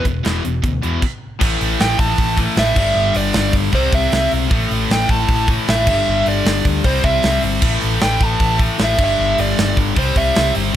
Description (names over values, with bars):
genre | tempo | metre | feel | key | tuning
hard rock | 154 BPM | 4/4 | straight | A minor | A4 = 445 Hz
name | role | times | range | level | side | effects
dark smooth lead guitar | melody | 0.0-10.5 s | C5 to A5 | -20 LUFS | right 1 dB | overdrive, tape echo
cranked stack guitar | riff | 0.0-10.8 s | E2 to C4 | -22 LUFS | left 12 dB | overdrive
scooped high-gain guitar | riff | 0.0-10.8 s | E2 to C4 | -23 LUFS | right 10 dB | distortion
picked electric bass | bass | 0.1-10.7 s | E1 to E2 | -20 LUFS | equal | none
tight metal drum kit | drums | 0.1-10.6 s | crash cymbal, hi-hat, kick drum, snare drum | -20 LUFS | equal | none
room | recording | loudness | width
light reverb, studio reverb | none | -14 LUFS | side -11 dB against mid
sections
0.0-1.4 A section; 1.4-10.8 B section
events
stop 1.0-1.4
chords
0.0 E5; 1.4 A5; 2.8 G5; 3.7 C; 4.5 A5; 5.9 G5; 6.8 C; 7.6 A5; 9.0 G5; 10.0 C